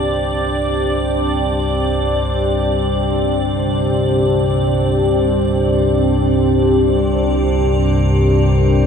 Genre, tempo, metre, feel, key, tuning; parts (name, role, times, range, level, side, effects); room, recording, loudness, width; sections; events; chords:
ambient; free time; A4 = 441 Hz
deep dark ambient pad; sustained chords; 0.0-8.9 s; C4 to D5; -16 LUFS; equal; chorus, built-in reverb, shimmer reverb
analog drone; drone; 0.0-8.9 s; C2 to G2; -18 LUFS; equal; chorus
icy glass pad; texture; 0.0-8.9 s; Bb4 to D5; -25 LUFS; equal; chorus, built-in reverb, shimmer reverb
wet huge ambient reverb, RT60 7.5 s; dark, warm production; -14 LUFS; side -7 dB against mid
0.0-8.9 A section
fade-in on synth drone 0.0-8.9
0.0 Csus2